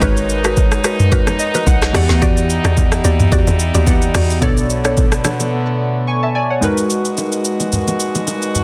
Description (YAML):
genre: amapiano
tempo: 109 BPM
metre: 4/4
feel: swing 55% on 16ths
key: G# minor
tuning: A4 = 440 Hz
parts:
  - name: warm analog keys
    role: accompaniment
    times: 0.0-8.6 s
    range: B2 to C#6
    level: -21 LUFS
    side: equal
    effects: chorus
  - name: muted French horn section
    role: sustained chords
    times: 0.0-8.6 s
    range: A#2 to F#4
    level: -26 LUFS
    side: equal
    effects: sidechain pumping
  - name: mallet-like synth pluck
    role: stabs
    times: 0.0-5.4 s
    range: D4 to D5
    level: -26 LUFS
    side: equal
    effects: chorus, phaser, digital delay
  - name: tight log drum bass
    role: bass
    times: 0.0-5.2 s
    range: G#1 to E2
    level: -20 LUFS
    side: equal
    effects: none
  - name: afro-pop drum kit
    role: drums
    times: 0.0-8.6 s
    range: hi-hat, kick drum, rim click, shaker, snare drum, toms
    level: -19 LUFS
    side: equal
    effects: soft clipping on snare
  - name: congas and bongos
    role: percussion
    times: 0.0-8.6 s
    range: none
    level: -27 LUFS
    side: equal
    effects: none
room: light reverb, digital ambience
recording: dense, heavily limited modern master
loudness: -15 LUFS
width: mono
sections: 0.0-6.6 A section; 6.6-8.6 B section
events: drop 0.0-6.6; synth keys fill 1.1-2.2; drums muted 5.5-6.6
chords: 0.0 G#m9; 1.9 Em9; 4.4 Bm9; 6.6 G#m9